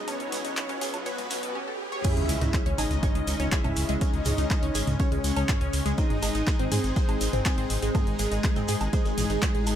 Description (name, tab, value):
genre	melodic techno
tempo	122 BPM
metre	4/4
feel	straight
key	C# minor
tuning	A4 = 439 Hz
part	wide unison lead	melody	0.0-9.8 s	G#3 to E4	-33 LUFS	equal	ping-pong delay
part	big bright polysynth	second line	0.0-9.8 s	G#4 to E5	-37 LUFS	right 2 dB	chorus, sidechain pumping, tape echo
part	brassy analog pad	stabs	0.0-9.8 s	B2 to G#4	-35 LUFS	left 2 dB	chorus, sidechain pumping, tape echo
part	swelling detuned saw bass	bass	0.0-9.7 s	F#1 to G#2	-29 LUFS	equal	sidechain pumping, high-pass filter
part	riser and sub drop	sound effects	0.0-4.0 s	none	-34 LUFS	right 1 dB	none
part	analog pluck	arpeggios	0.1-9.6 s	G#3 to C#6	-34 LUFS	left 1 dB	chorus, phaser, sidechain pumping, tape echo
part	punchy analog drum machine	drums	0.1-9.8 s	crash cymbal, handclaps, hi-hat, toms, woodblock	-32 LUFS	equal	overdrive, high-pass filter on hats, high-pass filter on snare, high-pass filter on toms, high-pass filter on perc, high-pass filter on cymbals
part	shekere	percussion	0.1-9.8 s	none	-38 LUFS	right 5 dB	none
part	electronic kick drum	drums	2.0-9.5 s	none	-26 LUFS	equal	overdrive
room	little or no reverb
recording	high-pass filter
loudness	-24 LUFS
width	side -10 dB against mid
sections	0.0-2.0 A section; 2.0-9.8 B section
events	build-up 0.0-2.0; riser 0.0-2.0; filter sweep on synth arpeggio sound 0.0-2.0; drop 2.0-9.8; impact 2.0-4.0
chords	0.0 B5; 2.0 C#m; 6.0 G#